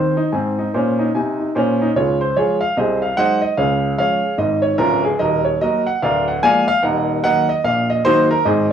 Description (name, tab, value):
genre	jazz, stride piano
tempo	148 BPM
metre	4/4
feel	swing 63% on 8ths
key	Db major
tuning	A4 = 442 Hz
part	clear upright piano	solo	0.0-8.7 s	D1 to Ab5	-15 LUFS	right 1 dB	none
room	moderate studio reverb, RT60 0.6 s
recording	small room ambience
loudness	-15 LUFS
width	side -8 dB against mid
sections	0.0-2.0 A section; 2.0-8.7 B section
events	none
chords	0.3 Ab; 2.0 Db; 2.8 Ab7/C; 3.6 Db; 5.2 Ebm; 6.0 Bb7/D; 6.8 Ebm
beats	| 0.34 0.74 1.14 1.55 | 1.95 2.36 2.76 3.17 | 3.58 3.98 4.39 4.79 | 5.20 5.60 6.01 6.42 | 6.82 7.23 7.64 8.04 | 8.45